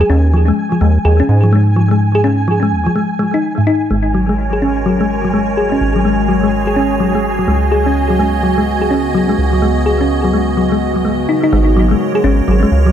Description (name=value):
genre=IDM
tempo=126 BPM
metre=4/4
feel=swing 62% on 16ths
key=G# minor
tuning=A4 = 440 Hz
part: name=thumb-piano-like synth pluck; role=arpeggios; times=0.0-12.9 s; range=G#2 to G#4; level=-15 LUFS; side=left 2 dB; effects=chorus, tape echo
part: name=deep acid bass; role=bass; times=0.0-12.9 s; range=G#1 to G#2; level=-15 LUFS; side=right 1 dB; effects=none
part: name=flickering grainy texture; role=texture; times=0.0-11.5 s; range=G#5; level=-23 LUFS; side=right 3 dB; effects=built-in reverb
part: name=icy glass pad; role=sustained chords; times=4.2-12.9 s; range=C#3 to D#5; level=-18 LUFS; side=right 1 dB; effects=chorus, built-in reverb
room=moderate echo chamber reverb, RT60 1.3 s, digital ambience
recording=echo-heavy mix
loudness=-11 LUFS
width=side -9 dB against mid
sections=0.0-3.9 A section; 3.9-11.5 B section; 11.5-12.9 C section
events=filter sweep on synth arpeggio sound 3.9-11.5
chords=0.1 D#sus4; 3.9 G#9sus4; 7.5 C#9sus4; 11.3 G#9sus4